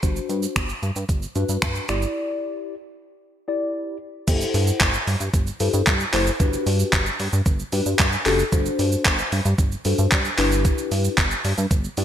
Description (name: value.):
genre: dance-pop.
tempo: 113 BPM.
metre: 4/4.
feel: straight.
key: unclear.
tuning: A4 = 438 Hz.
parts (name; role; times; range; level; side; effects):
mellow tine electric piano; accompaniment; 0.0-12.0 s; D4 to D5; -25 LUFS; left 3 dB; analog chorus, sidechain pumping.
chorused synth bass; bass; 0.0-12.0 s; F#1 to G2; -23 LUFS; equal; sidechain pumping.
gated 80s digital drum machine; drums; 0.0-12.0 s; crash cymbal, finger snaps, handclaps, hi-hat, kick drum, shaker; -22 LUFS; equal; gated reverb.
room: light reverb, digital ambience.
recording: bright 1980s-style digital production.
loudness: -19 LUFS.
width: side -10 dB against mid.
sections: 0.0-4.3 A section; 4.3-12.0 B section.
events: break 2.2-4.3.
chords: 0.0 D7/G; 1.9 Em7/G; 4.3 Am7/G; 6.4 Gmaj7; 8.5 D7/G; 10.4 Em7/G.